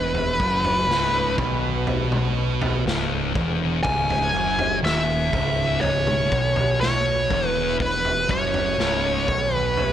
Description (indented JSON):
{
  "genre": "stoner and doom metal",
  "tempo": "61 BPM",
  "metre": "4/4",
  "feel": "straight",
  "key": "C# minor",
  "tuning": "A4 = 440 Hz",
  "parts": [
    { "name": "fuzz lead guitar", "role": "melody", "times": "0.0-9.9 s", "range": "B4 to G#5", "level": "-22 LUFS", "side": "equal", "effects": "wah, distortion, analog delay" },
    { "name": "thick fuzz guitar", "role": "riff", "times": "0.0-9.9 s", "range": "C#2 to B2", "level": "-28 LUFS", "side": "left 8 dB", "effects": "distortion" },
    { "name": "thick fuzz guitar", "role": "riff", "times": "0.0-9.9 s", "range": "C#2 to B2", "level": "-28 LUFS", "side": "right 9 dB", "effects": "distortion" },
    { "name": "growling picked electric bass", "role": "bass", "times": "0.0-9.9 s", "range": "C#1 to B1", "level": "-29 LUFS", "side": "equal", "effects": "overdrive" },
    { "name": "raw garage drum kit", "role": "drums", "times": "0.1-9.9 s", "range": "kick drum, snare drum, toms", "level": "-27 LUFS", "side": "equal", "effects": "none" }
  ],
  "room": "moderate studio reverb, RT60 0.5 s",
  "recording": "none",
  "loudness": "-19 LUFS",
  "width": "side -10 dB against mid",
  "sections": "0.0-9.9 A section",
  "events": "none",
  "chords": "0.0 C#m"
}